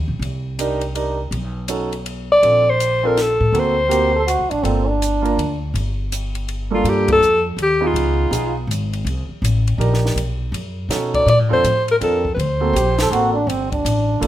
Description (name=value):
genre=jazz, small-group swing and bop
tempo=163 BPM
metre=3/4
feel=swing 63% on 8ths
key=G minor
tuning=A4 = 440 Hz
part: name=upright bass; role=bass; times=0.0-14.3 s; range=G1 to B2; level=-21 LUFS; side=equal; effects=none
part: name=compact cocktail drum kit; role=drums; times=0.2-14.3 s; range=hi-hat, kick drum, ride cymbal, snare drum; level=-30 LUFS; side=left 1 dB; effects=none
part: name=warm concert grand piano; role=accompaniment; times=0.6-14.3 s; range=G2 to Bb4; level=-23 LUFS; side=right 4 dB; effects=none
part: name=warm alto saxophone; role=melody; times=2.3-4.5, 6.7-8.6, 11.2-13.4 s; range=F4 to D5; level=-16 LUFS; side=left 1 dB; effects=none
part: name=warm trombone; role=second line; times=3.9-5.6, 12.7-14.3 s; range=C4 to A4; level=-20 LUFS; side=right 2 dB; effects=none
room=light reverb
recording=none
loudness=-16 LUFS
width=side -13 dB against mid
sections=0.0-6.8 A section; 6.8-14.3 A section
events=band accent 7.0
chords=0.2 Cm9; 1.3 B9; 2.4 Bbmaj9; 3.5 D7b13; 4.6 Gm7; 8.0 C#9; 9.1 Cm9; 10.2 B9; 11.3 Bbmaj9; 12.4 D7b13; 13.5 Gm